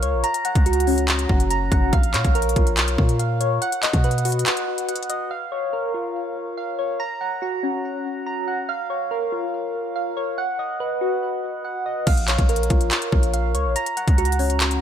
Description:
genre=hip hop, trap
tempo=142 BPM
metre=4/4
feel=half-time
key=Bb phrygian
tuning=A4 = 439 Hz
part: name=soft electric-piano-like synth keys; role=arpeggios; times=0.0-14.8 s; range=Db4 to Bb5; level=-23 LUFS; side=equal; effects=chorus, phaser, ping-pong delay
part: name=warm 808-style bass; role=bass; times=0.0-4.4, 12.1-14.8 s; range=Gb1 to B2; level=-22 LUFS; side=equal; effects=none
part: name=trap drum kit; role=drums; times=0.0-5.2, 12.1-14.8 s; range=crash cymbal, handclaps, hi-hat, kick drum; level=-20 LUFS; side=equal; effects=none
room=light reverb, digital ambience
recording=none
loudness=-20 LUFS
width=side -9 dB against mid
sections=0.0-5.3 A section; 5.3-12.1 B section; 12.1-14.8 A section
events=break 4.5-5.3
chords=0.2 Gb; 1.9 Bbm; 3.6 B; 5.3 Bbm; 7.0 Gb; 8.7 Bbm; 10.4 B; 12.1 Bbm; 13.8 Gb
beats=| 0.24 0.66 1.08 1.50 | 1.93 2.35 2.77 3.19 | 3.62 4.04 4.46 4.88 | 5.31 5.73 6.15 6.58 | 7.00 7.42 7.84 8.27 | 8.69 9.11 9.53 9.96 | 10.38 10.80 11.22 11.65 | 12.07 12.49 12.91 13.34 | 13.76 14.18 14.60

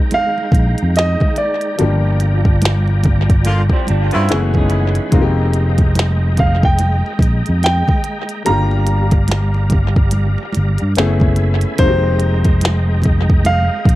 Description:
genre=R&B, neo-soul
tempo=72 BPM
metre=4/4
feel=swing 61% on 16ths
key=F dorian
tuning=A4 = 441 Hz
part: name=clear upright piano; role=accompaniment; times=0.0-14.0 s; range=Eb3 to Ab4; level=-23 LUFS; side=left 3 dB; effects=tape echo
part: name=tonewheel organ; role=sustained chords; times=0.0-14.0 s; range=Ab3 to Cb6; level=-26 LUFS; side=equal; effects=slow rotary speaker, chorus vibrato
part: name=clear baby grand piano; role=melody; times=0.1-14.0 s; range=C5 to Bb5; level=-20 LUFS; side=right 1 dB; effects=tape echo
part: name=glitchy drum kit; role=drums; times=0.1-14.0 s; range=hi-hat, kick drum, snare drum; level=-16 LUFS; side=equal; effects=none
part: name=congas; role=percussion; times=0.1-14.0 s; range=none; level=-27 LUFS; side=right 2 dB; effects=none
part: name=fingered electric bass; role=bass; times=0.5-14.0 s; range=F1 to G2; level=-15 LUFS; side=equal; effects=none
part: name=clear horn section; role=stabs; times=3.5-4.4 s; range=Db3 to F4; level=-25 LUFS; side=left 1 dB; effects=tape echo
part: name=electric guitar through a small old amp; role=second line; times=3.7-5.1 s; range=G3 to Ab4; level=-24 LUFS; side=right 4 dB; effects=none
room=studio reverb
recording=echo-heavy mix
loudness=-12 LUFS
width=side -16 dB against mid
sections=0.0-14.0 A section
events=band accent 1.8-5.1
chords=0.0 Fm11; 1.8 Gm7; 4.3 Gbm11; 5.1 Fm11; 8.5 Gm7; 11.0 Gbm11; 11.8 Fm11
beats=0.13 0.96 | 1.79 2.63 3.46 4.29 | 5.13 5.96 6.79 7.63 | 8.46 9.29 10.13 10.96 | 11.79 12.63 13.46

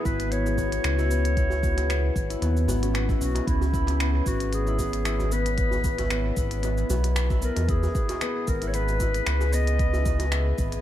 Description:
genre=organic downtempo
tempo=114 BPM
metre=4/4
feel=swing 54% on 16ths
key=C# minor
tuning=A4 = 440 Hz
part: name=warm clarinet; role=melody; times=0.0-10.6 s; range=E4 to D#5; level=-31 LUFS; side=equal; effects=ping-pong delay
part: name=warm analog pad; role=sustained chords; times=0.0-10.8 s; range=B3 to C#5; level=-35 LUFS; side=equal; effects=chorus, sidechain pumping
part: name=concert harp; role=arpeggios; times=0.0-10.8 s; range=B3 to B4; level=-31 LUFS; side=left 3 dB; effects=digital delay
part: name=round analog bass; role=bass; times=0.1-10.8 s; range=G#1 to E2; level=-25 LUFS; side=equal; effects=sidechain pumping
part: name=electronic kick drum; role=drums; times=0.1-10.7 s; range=none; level=-27 LUFS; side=equal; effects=none
part: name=organic electronic drum kit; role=drums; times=0.1-10.8 s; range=finger snaps, hi-hat, shaker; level=-34 LUFS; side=equal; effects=none
part: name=djembe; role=percussion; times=0.5-10.3 s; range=none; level=-37 LUFS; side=right 2 dB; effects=none
room=light reverb, digital ambience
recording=dark, warm production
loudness=-22 LUFS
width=side -12 dB against mid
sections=0.0-10.8 A section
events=none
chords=0.0 C#m7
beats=0.32 0.85 | 1.37 1.90 2.42 2.95 | 3.48 4.00 4.53 5.06 | 5.58 6.11 6.64 7.16 | 7.69 8.21 8.74 9.27 | 9.79 10.32

